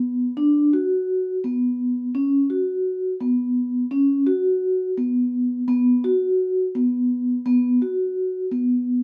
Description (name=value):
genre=contemporary instrumental, contemporary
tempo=170 BPM (eighths)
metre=5/8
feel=straight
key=unclear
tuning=A4 = 441 Hz
part: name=vibraphone with soft mallets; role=solo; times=0.0-9.0 s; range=B3 to F#4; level=-22 LUFS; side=equal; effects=none
room=light reverb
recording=none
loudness=-21 LUFS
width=mono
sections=0.0-9.0 A section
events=none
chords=none